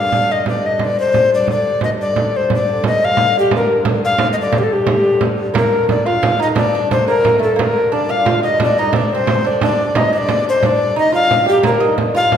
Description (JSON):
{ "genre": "medieval dance", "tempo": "118 BPM (dotted quarters)", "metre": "6/8", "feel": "straight", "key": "G minor", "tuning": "A4 = 440 Hz", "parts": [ { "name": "breathy bass recorder", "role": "melody", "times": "0.0-12.4 s", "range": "G4 to F5", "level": "-15 LUFS", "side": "left 2 dB", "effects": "none" }, { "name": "dark hurdy-gurdy", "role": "drone", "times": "0.0-12.4 s", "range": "G2 to D3", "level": "-24 LUFS", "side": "left 1 dB", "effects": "none" }, { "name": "frame drum", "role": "percussion", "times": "0.1-12.4 s", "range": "none", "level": "-19 LUFS", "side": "right 3 dB", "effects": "none" }, { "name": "lute", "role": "second line", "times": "5.5-12.4 s", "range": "A3 to G4", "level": "-20 LUFS", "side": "right 4 dB", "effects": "none" } ], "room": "wet recital hall reverb, RT60 1.8 s", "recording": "recorded in a church or concert hall", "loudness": "-13 LUFS", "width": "side -8 dB against mid", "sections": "0.0-5.6 A section; 5.6-12.4 A section", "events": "none", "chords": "none" }